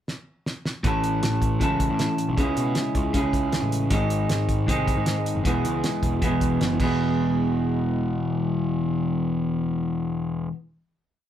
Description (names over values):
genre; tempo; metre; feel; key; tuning
indie rock; 156 BPM; 4/4; straight; E major; A4 = 440 Hz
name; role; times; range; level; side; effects
cloth-damped thuddy drum kit; drums; 0.1-6.9 s; crash cymbal, hi-hat, kick drum, snare drum; -27 LUFS; equal; none
electric guitar at the edge of break-up; riff; 0.8-10.5 s; E2 to A4; -24 LUFS; equal; none
fuzz picked electric bass; bass; 0.8-10.5 s; E1 to B2; -28 LUFS; equal; overdrive
room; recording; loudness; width
light reverb; band playing live in one room; -22 LUFS; side -10 dB against mid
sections
0.0-0.8 pickup bar; 0.8-7.0 interlude; 7.0-10.1 final hit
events
drum fill 0.1-0.8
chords
0.0 N.C.; 0.8 A; 2.4 C#m; 3.9 G#; 5.5 E